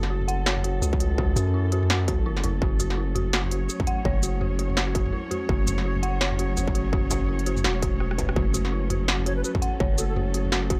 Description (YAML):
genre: half-time drum and bass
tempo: 167 BPM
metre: 4/4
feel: swing 59% on 16ths, half-time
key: F# minor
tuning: A4 = 440 Hz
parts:
  - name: dark chamber cello section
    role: sustained chords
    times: 0.0-10.8 s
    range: F#3 to C#5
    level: -35 LUFS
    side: equal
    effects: sidechain pumping
  - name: dark detuned synth bell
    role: arpeggios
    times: 0.0-10.8 s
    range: E4 to F#5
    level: -34 LUFS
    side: equal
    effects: chorus, tape echo
  - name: long sustained 808-style bass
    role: bass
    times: 0.0-10.8 s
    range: E1 to F#2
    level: -28 LUFS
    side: equal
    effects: transformer saturation
  - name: industrial drum kit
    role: drums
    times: 0.0-10.8 s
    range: hi-hat, rim click, shaker, snare drum, toms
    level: -31 LUFS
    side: equal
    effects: none
  - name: electronic kick drum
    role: drums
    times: 0.9-10.8 s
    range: none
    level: -28 LUFS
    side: equal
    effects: distortion
  - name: hollow concert flute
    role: melody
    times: 9.3-10.1 s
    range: A4 to C#5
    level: -38 LUFS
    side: equal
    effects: tape echo
room: little or no reverb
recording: dry, gritty hardware recording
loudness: -25 LUFS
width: mono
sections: 0.0-10.8 A section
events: drum fill 8.0-8.4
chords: 0.0 F#m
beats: 0.10 0.46 0.82 | 1.18 1.54 1.90 2.26 | 2.62 2.98 3.34 3.70 | 4.06 4.42 4.77 5.13 | 5.49 5.85 6.21 6.57 | 6.93 7.29 7.65 8.01 | 8.37 8.73 9.09 9.45 | 9.80 10.16 10.52